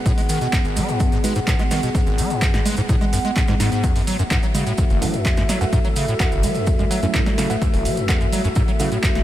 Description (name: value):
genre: acid house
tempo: 127 BPM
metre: 4/4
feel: straight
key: unclear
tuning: A4 = 444 Hz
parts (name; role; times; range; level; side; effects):
- dark analog pad; sustained chords; 0.0-9.2 s; A3 to F#5; -25 LUFS; equal; chorus, phaser, sidechain pumping
- acid bass, square; riff; 0.1-9.2 s; F#1 to G#3; -23 LUFS; equal; tube saturation, analog chorus, sidechain pumping, analog delay
- electronic kick drum; drums; 0.1-9.1 s; none; -20 LUFS; equal; overdrive
- punchy analog drum machine; drums; 0.1-9.2 s; congas, cowbell, handclaps, hi-hat, snare drum; -26 LUFS; right 2 dB; overdrive
- maracas; percussion; 0.1-9.2 s; none; -34 LUFS; right 3 dB; none
- mellow tine electric piano; stabs; 1.2-1.4, 5.0-8.9 s; F#3 to B4; -31 LUFS; right 4 dB; none
room: light reverb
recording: none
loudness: -17 LUFS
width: side -13 dB against mid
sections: 0.0-9.2 A section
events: none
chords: 0.0 G#m7; 3.8 F#m7